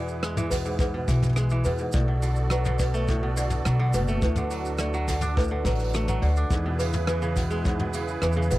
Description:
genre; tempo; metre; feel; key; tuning
folktronica; 105 BPM; 4/4; straight; B dorian; A4 = 444 Hz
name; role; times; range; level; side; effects
toy piano; second line; 0.0-8.6 s; B4 to D5; -33 LUFS; equal; tape echo
musette accordion; sustained chords; 0.0-8.6 s; D3 to D5; -35 LUFS; right 3 dB; none
kora; arpeggios; 0.0-8.6 s; G#2 to D4; -30 LUFS; equal; tape echo
upright bass; bass; 0.0-8.6 s; F#1 to E2; -26 LUFS; equal; none
soft brush drum kit; drums; 0.1-8.6 s; hi-hat, rim click, shaker, toms; -33 LUFS; equal; none
kick drum; drums; 0.5-7.8 s; none; -27 LUFS; equal; none
room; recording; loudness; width
little or no reverb; dry, close 1970s-style studio recording; -23 LUFS; side -16 dB against mid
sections
0.0-8.6 A section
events
none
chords
0.0 E; 1.9 Bm7; 4.2 D; 6.5 C#m7/E

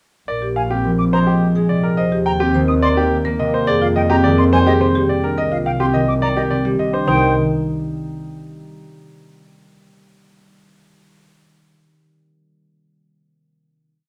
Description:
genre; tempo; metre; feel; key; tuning
classical, minimalist pattern music; 106 BPM; 3/4; straight; C minor; A4 = 440 Hz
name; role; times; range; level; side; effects
clear concert grand piano; melody; 0.3-7.3 s; G4 to G5; -23 LUFS; equal; none
marimba with medium hard mallets; arpeggios; 0.3-7.3 s; C4 to C5; -23 LUFS; equal; none
rich chamber double bass section; bass; 0.3-7.3 s; Bb1 to F2; -24 LUFS; equal; none
concert flute; arpeggios; 0.6-7.3 s; Eb5 to Eb6; -25 LUFS; equal; none
concert harp; accompaniment; 0.8-8.8 s; C3 to Bb3; -23 LUFS; equal; none
room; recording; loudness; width
light reverb; none; -17 LUFS; mono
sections
0.3-7.1 A section; 7.1-8.8 final chord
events
none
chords
0.3 Bb9; 2.0 Eb; 3.7 Fm11; 5.4 Cm11; 7.1 Cm

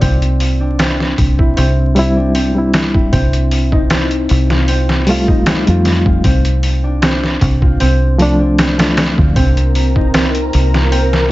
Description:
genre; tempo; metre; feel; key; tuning
trip hop; 77 BPM; 4/4; swing 53% on 16ths; C dorian; A4 = 440 Hz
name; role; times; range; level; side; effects
concert harp; arpeggios; 0.0-11.3 s; C4 to F4; -19 LUFS; equal; vintage 12-bit sampler grit, tape echo
deep dub fingered electric bass; bass; 0.0-11.3 s; C2 to F2; -14 LUFS; equal; none
trip hop sampler-style drum kit; drums; 0.0-11.3 s; hi-hat, kick drum, snare drum; -16 LUFS; equal; none
reed electric piano; accompaniment; 1.9-9.4 s; F3 to F4; -16 LUFS; equal; fast tremolo, tape echo
string machine, cellos; sustained chords; 9.4-11.3 s; C4 to Bb5; -20 LUFS; right 1 dB; ensemble chorus
room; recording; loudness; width
digital ambience; vinyl crackle, nothing above 7.8 kHz; -11 LUFS; side -18 dB against mid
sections
0.0-11.3 A section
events
none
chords
0.0 C; 3.1 Fadd9/C; 6.2 Dm/C; 9.4 Cm7

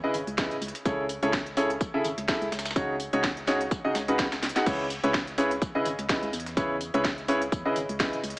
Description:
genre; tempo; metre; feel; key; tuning
piano house; 126 BPM; 4/4; swing 56% on 16ths; C# minor; A4 = 440 Hz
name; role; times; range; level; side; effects
clear concert grand piano; riff; 0.0-8.2 s; C#3 to F#5; -27 LUFS; equal; sidechain pumping, dub echo
organ-like FM bass; bass; 0.1-8.3 s; G#1 to E2; -40 LUFS; equal; sidechain pumping
dusty soul sampler-style drum kit; drums; 0.1-8.4 s; hi-hat, snare drum, tambourine; -37 LUFS; equal; sidechain pumping on perc, high-pass filter on perc, small room ambience, high-pass filter on snare, sidechain pumping on hats, high-pass filter on hats
house drum kit; drums; 0.1-8.4 s; crash cymbal, hi-hat, snare drum; -32 LUFS; equal; small room ambience
electronic kick drum; drums; 0.4-8.1 s; none; -30 LUFS; equal; small room ambience
room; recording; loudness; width
moderate lush hall reverb, RT60 2.0 s; small speaker sound; -25 LUFS; side -23 dB against mid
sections
0.0-8.4 A section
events
drum fill 4.3-4.7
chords
0.0 C#m7; 0.6 Amaj7/C#; 2.5 G#7sus4/C#; 4.7 C#m7

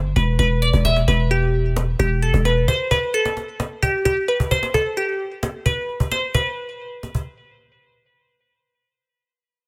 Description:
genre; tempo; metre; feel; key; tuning
hip hop, trap; 131 BPM; 4/4; half-time; E minor; A4 = 436 Hz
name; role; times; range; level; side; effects
growling 808-style bass; bass; 0.0-2.7 s; E1 to G1; -21 LUFS; equal; none
glassy wavetable pluck; melody; 0.2-7.7 s; G4 to E5; -24 LUFS; equal; chorus, tape echo
cajon; drums; 0.2-7.3 s; none; -26 LUFS; equal; none
room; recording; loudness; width
small room ambience; none; -20 LUFS; mono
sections
0.0-6.3 A section; 6.3-9.7 B section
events
none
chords
0.0 Em; 2.7 N.C.

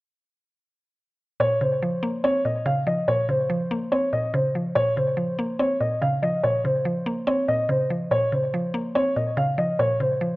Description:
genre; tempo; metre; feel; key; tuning
hip hop; 143 BPM; 4/4; half-time; Bb minor; A4 = 437 Hz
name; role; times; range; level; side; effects
dark grand piano; melody; 1.4-10.4 s; C5 to F5; -23 LUFS; equal; none
mallet-like synth pluck; accompaniment; 1.4-10.4 s; Bb2 to C4; -26 LUFS; equal; chorus
room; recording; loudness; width
light reverb, small room ambience; worn, warbling old tape, cassette tape, warbly pitch drift; -21 LUFS; side -20 dB against mid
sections
1.4-10.4 A section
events
none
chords
1.4 Bbmadd9

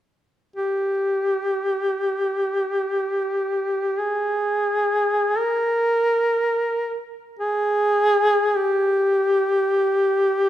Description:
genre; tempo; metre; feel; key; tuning
caucasian folk; free time; none; none; G phrygian; A4 = 440 Hz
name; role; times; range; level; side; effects
mellow duduk; solo; 0.6-10.5 s; G4 to Bb4; -19 LUFS; equal; none
room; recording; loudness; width
moderate concert hall reverb, RT60 2.0 s; minimal, uncompressed stereo recording; -19 LUFS; side -12 dB against mid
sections
0.0-10.5 A section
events
none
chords
none

